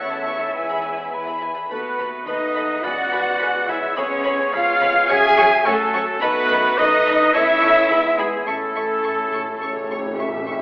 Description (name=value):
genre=classical, dramatic, fast romantic movement for symphony orchestra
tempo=106 BPM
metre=4/4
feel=straight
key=A major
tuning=A4 = 439 Hz
part: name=warm symphonic violin section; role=melody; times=0.0-10.6 s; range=G#5 to C#6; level=-31 LUFS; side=left 1 dB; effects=none
part: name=bright clarinet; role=second line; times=0.0-10.2 s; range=E4 to E5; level=-25 LUFS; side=equal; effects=none
part: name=dark studio violin section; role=second line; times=0.0-10.6 s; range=E4 to E5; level=-30 LUFS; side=equal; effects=none
part: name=mellow concert flute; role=second line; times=0.0-1.7 s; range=E5 to B5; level=-29 LUFS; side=equal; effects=none
part: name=warm oboe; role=second line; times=0.0-10.2 s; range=G#4 to G#5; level=-26 LUFS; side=equal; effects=none
part: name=rich symphonic viola section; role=accompaniment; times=0.0-10.2 s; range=G#4 to G#5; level=-22 LUFS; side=equal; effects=none
part: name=warm French horn section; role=sustained chords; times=0.0-10.5 s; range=F#3 to D#4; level=-30 LUFS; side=left 1 dB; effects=none
part: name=concert harp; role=arpeggios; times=0.0-10.6 s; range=E2 to C#5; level=-38 LUFS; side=left 2 dB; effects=none
part: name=clear trumpet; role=stabs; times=0.0-10.2 s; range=G#4 to G#5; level=-24 LUFS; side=equal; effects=none
part: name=rich symphonic cello section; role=bass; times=0.0-10.2 s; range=G#3 to G#4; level=-25 LUFS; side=equal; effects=none
part: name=warm symphonic double bass section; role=bass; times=0.0-10.6 s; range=A1 to F#2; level=-37 LUFS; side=equal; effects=none
part: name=timpani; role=percussion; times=2.8-3.6, 8.5-10.6 s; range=E2 to A2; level=-31 LUFS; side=equal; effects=none
room=wet scoring stage reverb, RT60 1.9 s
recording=telephone sound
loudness=-16 LUFS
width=side -22 dB against mid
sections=0.0-10.6 A section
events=timpani fill 8.5-10.6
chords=0.0 A/E; 0.6 E; 1.7 B7/D#; 2.8 E; 4.0 C#7/E#; 5.1 F#m; 6.2 B7/F#; 7.3 A/E; 7.9 E; 8.5 A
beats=0.56 1.14 | 1.71 2.27 2.84 3.41 | 3.97 4.54 5.10 5.66 | 6.22 6.78 7.34 7.91 | 8.47 9.05 9.62 10.20